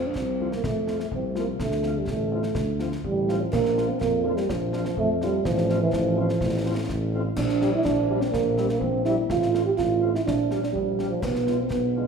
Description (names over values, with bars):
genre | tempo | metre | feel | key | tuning
military-style march for wind band | 125 BPM | 2/4 | straight | F major | A4 = 436 Hz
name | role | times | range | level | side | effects
mellow euphonium | second line | 0.0-12.1 s | E3 to G4 | -24 LUFS | right 3 dB | none
warm tuba | bass | 0.0-12.1 s | A1 to F2 | -28 LUFS | equal | none
concert snare drum, concert bass drum and clash cymbals | drums | 0.2-11.9 s | none | -34 LUFS | left 2 dB | none
dark trumpet section | melody | 0.4-12.0 s | E5 to F5 | -49 LUFS | equal | none
mellow French horn section | accompaniment | 0.4-12.1 s | F3 to G4 | -35 LUFS | left 6 dB | none
room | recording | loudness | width
wet recital hall reverb, RT60 1.5 s | recorded in a church or concert hall | -22 LUFS | side -6 dB against mid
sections
0.0-12.1 A section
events
none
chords
0.0 F; 1.6 Dm7; 3.5 Bb; 5.5 F/A; 7.4 Gm/Bb; 8.3 C7/Bb; 9.3 F/A; 10.3 Gm7/Bb; 11.2 Bdim7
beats
0.17 | 0.65 1.13 | 1.61 2.09 | 2.57 3.05 | 3.53 4.01 | 4.49 4.97 | 5.45 5.93 | 6.41 6.89 | 7.38 7.86 | 8.34 8.82 | 9.30 9.78 | 10.27 10.75 | 11.23 11.71